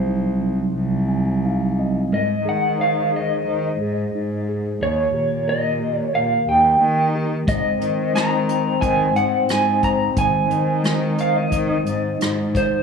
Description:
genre	acoustic folk-pop ballad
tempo	89 BPM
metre	4/4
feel	straight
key	unclear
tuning	A4 = 440 Hz
part	electric guitar through a small old amp	melody	0.0-12.8 s	C5 to Bb5	-20 LUFS	right 1 dB	tremolo, slapback echo
part	mellow tine electric piano	accompaniment	0.0-12.8 s	C3 to Ab5	-24 LUFS	right 2 dB	medium stereo tremolo
part	dark cello	bass	0.0-12.8 s	C2 to Eb3	-24 LUFS	left 1 dB	none
part	mellow French horn	second line	7.5-12.5 s	C4	-25 LUFS	left 8 dB	none
part	soft brush drum kit	drums	7.5-12.7 s	hi-hat, kick drum, rim click	-26 LUFS	equal	none
room	light reverb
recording	small room reverb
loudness	-17 LUFS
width	side -6 dB against mid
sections	0.0-2.1 A section; 2.1-12.8 B section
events	none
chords	0.0 Cdim; 2.1 Ab; 4.8 Eb7; 7.5 Ab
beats	0.06 0.74 1.43 | 2.12 2.79 3.47 4.14 | 4.81 5.48 6.15 6.81 | 7.48 8.15 8.82 9.49 | 10.16 10.84 11.51 12.20

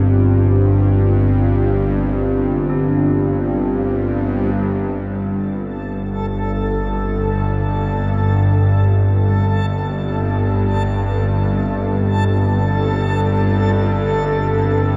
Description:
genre	dark ambient drone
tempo	free time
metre	none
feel	none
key	unclear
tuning	A4 = 440 Hz
part	sweeping resonant pad	sustained chords	0.0-15.0 s	C4 to G4	-25 LUFS	equal	chorus
part	tubular bells	arpeggios	0.0-10.2 s	G4 to A4	-45 LUFS	equal	none
part	bowed-like drone	drone	0.0-15.0 s	G1 to G2	-19 LUFS	equal	built-in reverb
part	backwards swelling texture	texture	5.5-15.0 s	A4	-26 LUFS	equal	built-in reverb
room	wet huge ambient reverb, RT60 8.0 s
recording	dark, warm production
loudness	-18 LUFS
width	mono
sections	0.0-4.6 A section; 4.6-15.0 B section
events	none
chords	0.0 G5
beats	free time

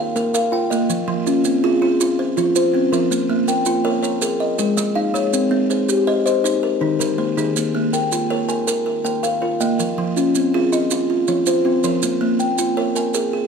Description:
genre	southern african traditional, mbira-style interlocking cycle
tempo	108 BPM (dotted quarters)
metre	12/8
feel	straight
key	Bb dorian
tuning	A4 = 438 Hz
part	buzzing kalimba	arpeggios	0.0-13.5 s	Eb3 to Ab5	-20 LUFS	right 4 dB	none
part	kalimba	arpeggios	0.0-13.5 s	Eb3 to G5	-19 LUFS	left 3 dB	none
part	maracas	percussion	0.2-13.3 s	none	-28 LUFS	right 10 dB	none
room	moderate recital hall reverb, RT60 1.5 s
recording	dark, warm production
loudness	-16 LUFS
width	side -6 dB against mid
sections	0.0-7.6 A section; 7.6-13.5 A section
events	none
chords	0.0 Bbm; 0.9 Fm; 3.1 Bbm; 4.2 Ab5; 5.3 Cm; 6.4 Eb5; 7.6 Bbm; 9.8 Fm; 12.0 Bbm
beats	0.34 | 0.90 1.45 2.01 2.56 | 3.11 3.67 4.22 4.78 | 5.33 5.89 6.44 7.00 | 7.56 8.12 8.67 9.23 | 9.79 10.35 10.91 11.47 | 12.03 12.59 13.14

